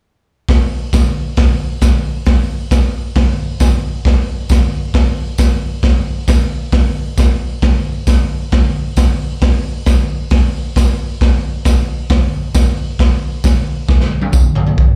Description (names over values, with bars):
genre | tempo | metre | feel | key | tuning
rock | 134 BPM | 4/4 | straight | none | none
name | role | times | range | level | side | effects
raw garage drum kit | drums | 0.5-14.9 s | hi-hat, kick drum, snare drum, toms | -14 LUFS | equal | none
tambourine | percussion | 0.9-14.4 s | none | -33 LUFS | equal | none
room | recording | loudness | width
small room ambience | live gig heard through the venue's PA, club reverb | -15 LUFS | mono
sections
0.5-14.8 A section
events
drum fill 13.9-14.8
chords
none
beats
| 0.47 0.92 1.37 1.82 | 2.26 2.71 3.16 3.60 | 4.05 4.50 4.95 5.39 | 5.84 6.29 6.73 7.18 | 7.62 8.07 8.52 8.97 | 9.41 9.86 10.31 10.75 | 11.20 11.65 12.10 12.54 | 12.99 13.44 13.88 14.33 | 14.78